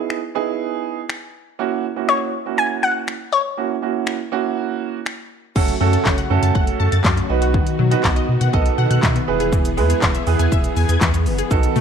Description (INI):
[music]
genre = dance-pop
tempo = 121 BPM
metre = 4/4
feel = straight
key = unclear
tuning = A4 = 441 Hz
[part]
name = analog pluck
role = melody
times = 0.0-5.0 s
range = C#5 to G#5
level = -19 LUFS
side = left 4 dB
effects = chorus, slapback echo
[part]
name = warm baby grand piano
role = accompaniment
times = 0.0-11.8 s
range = A3 to E5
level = -22 LUFS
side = right 11 dB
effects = sidechain pumping
[part]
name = pop drum kit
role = drums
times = 0.1-11.8 s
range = crash cymbal, finger snaps, handclaps, hi-hat, kick drum, shaker, snare drum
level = -20 LUFS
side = equal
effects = none
[part]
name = string machine, violas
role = sustained chords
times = 5.6-11.8 s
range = C#3 to A4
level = -27 LUFS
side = left 1 dB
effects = ensemble chorus, sidechain pumping
[part]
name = analog pluck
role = arpeggios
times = 5.6-11.8 s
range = D#3 to A6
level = -25 LUFS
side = left 12 dB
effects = chorus, sidechain pumping, slapback echo
[part]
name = saturated sub bass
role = bass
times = 5.6-11.8 s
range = E1 to B2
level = -19 LUFS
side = equal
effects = sidechain pumping
[sound]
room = light reverb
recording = 1960s-style stereo with parts hard left and right, lossy compression artefacts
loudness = -16 LUFS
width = side -7 dB against mid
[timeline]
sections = 0.0-5.6 A section; 5.6-11.8 B section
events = grand piano fill 8.8-9.5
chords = 0.0 Emaj7; 1.6 F#7; 5.6 F#m; 7.3 B; 9.3 E